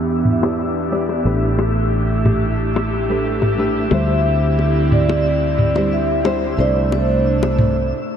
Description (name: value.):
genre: sunset chillout.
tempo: 90 BPM.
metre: 4/4.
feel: straight.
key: unclear.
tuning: A4 = 441 Hz.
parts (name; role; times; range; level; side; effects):
nylon-string guitar; accompaniment; 0.0-7.9 s; G3 to D5; -24 LUFS; moving between left 3 dB and right 5 dB; auto-pan, ping-pong delay.
airy breathy pad; sustained chords; 0.0-7.9 s; C3 to G4; -22 LUFS; equal; chorus.
fretless electric bass; bass; 0.0-7.9 s; A1 to E2; -20 LUFS; equal; none.
twinkling granular texture; texture; 0.0-7.9 s; E4 to E5; -29 LUFS; left 1 dB; built-in reverb, wide subtle chorus.
electronic toms; drums; 0.3-7.7 s; none; -20 LUFS; right 1 dB; none.
bongos; percussion; 0.4-7.6 s; none; -28 LUFS; left 4 dB; none.
vibraphone with soft mallets; melody; 3.9-7.9 s; C5 to E5; -21 LUFS; right 1 dB; ping-pong delay.
room: moderate lush hall reverb, RT60 2.7 s.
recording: bright 1980s-style digital production, low-pass filter.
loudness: -15 LUFS.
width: side -8 dB against mid.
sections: 0.0-8.2 A section.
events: filter sweep 0.0-8.2; break 7.9.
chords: 0.0 Em7; 1.3 A9sus4; 3.9 D9sus4; 6.6 C69.